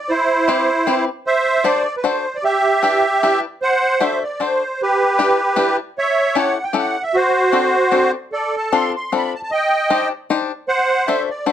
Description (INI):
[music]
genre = musette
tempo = 154 BPM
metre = 3/4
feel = swing 54% on 8ths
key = unclear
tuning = A4 = 440 Hz
[part]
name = musette accordion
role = melody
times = 0.0-11.5 s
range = E4 to C6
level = -16 LUFS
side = right 2 dB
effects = none
[part]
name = bluegrass banjo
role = accompaniment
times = 0.5-11.5 s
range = C4 to C5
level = -20 LUFS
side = left 7 dB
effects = none
[sound]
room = light reverb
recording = dark, warm production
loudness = -15 LUFS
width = side -10 dB against mid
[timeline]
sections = 0.0-11.5 A section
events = none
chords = 0.1 Cmaj7; 1.3 D7; 2.4 Em7; 3.6 D7; 4.8 Em7; 6.0 A7; 7.1 D7; 8.3 F6; 9.5 Cmadd9; 10.7 D7